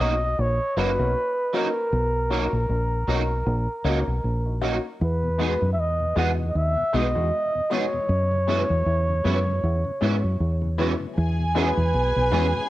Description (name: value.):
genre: reggae.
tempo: 78 BPM.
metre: 4/4.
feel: swing 57% on 16ths.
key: B major.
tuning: A4 = 440 Hz.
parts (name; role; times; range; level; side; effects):
breathy flugelhorn; melody; 0.0-12.7 s; A#4 to F#5; -26 LUFS; equal; cassette tape, tape echo, plate reverb.
clear concert grand piano; accompaniment; 0.0-12.6 s; G#3 to F#4; -30 LUFS; left 6 dB; cassette tape, plate reverb.
electric guitar at the edge of break-up; stabs; 0.0-12.5 s; E3 to G#4; -28 LUFS; right 6 dB; ensemble chorus, cassette tape, plate reverb.
fingered electric bass; bass; 0.0-12.5 s; F#1 to G#2; -24 LUFS; equal; none.
mellow tonewheel organ; accompaniment; 5.2-12.6 s; E2 to E4; -36 LUFS; left 5 dB; none.
dark studio violin section; second line; 11.2-12.7 s; G#4 to G#5; -28 LUFS; equal; cassette tape, plate reverb.
room: moderate studio reverb, RT60 0.5 s.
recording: home recording on cassette.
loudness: -21 LUFS.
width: side -15 dB against mid.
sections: 0.0-11.2 A section; 11.2-12.7 B section.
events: none.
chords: 0.0 Bmaj7; 5.0 Emaj7; 8.1 F#7sus4; 11.2 E6.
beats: 0.38 1.15 | 1.92 2.69 3.47 4.24 | 5.01 5.78 6.55 7.32 | 8.09 8.86 9.63 10.40 | 11.16 11.93.